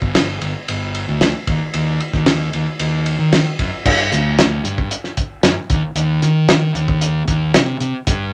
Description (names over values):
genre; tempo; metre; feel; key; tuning
psychedelic rock; 114 BPM; 4/4; straight; unclear; A4 = 441 Hz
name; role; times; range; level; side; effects
fuzz fingered electric bass; bass; 0.0-8.3 s; G1 to Eb3; -21 LUFS; equal; overdrive
cloth-damped thuddy drum kit; drums; 0.0-8.2 s; crash cymbal, hi-hat, kick drum, ride cymbal, snare drum; -19 LUFS; equal; none
room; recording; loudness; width
moderate small room ambience, RT60 0.5 s; none; -17 LUFS; mono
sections
0.0-3.9 A section; 3.9-8.3 B section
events
none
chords
none